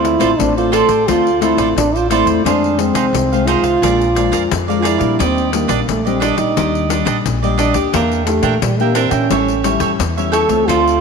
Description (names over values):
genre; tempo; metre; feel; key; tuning
samba and choro; 87 BPM; 4/4; straight; unclear; A4 = 440 Hz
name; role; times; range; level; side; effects
dark trombone; melody; 0.0-11.0 s; G3 to A4; -17 LUFS; right 3 dB; none
cavaquinho; accompaniment; 0.0-11.0 s; D4 to G5; -19 LUFS; right 9 dB; none
nylon-string guitar; accompaniment; 0.0-11.0 s; F2 to G4; -20 LUFS; left 11 dB; none
upright bass; bass; 0.0-11.0 s; A1 to Bb2; -21 LUFS; equal; none
pandeiro; percussion; 0.0-11.0 s; none; -23 LUFS; left 11 dB; none
room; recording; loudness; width
wet echo chamber reverb, RT60 2.2 s; 1960s-style stereo with parts hard left and right; -13 LUFS; side -5 dB against mid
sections
0.0-11.0 A section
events
none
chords
0.0 Dm7; 2.5 Fm7; 3.8 Bb7; 5.2 Ebmaj7; 7.9 Em7b5; 9.3 A7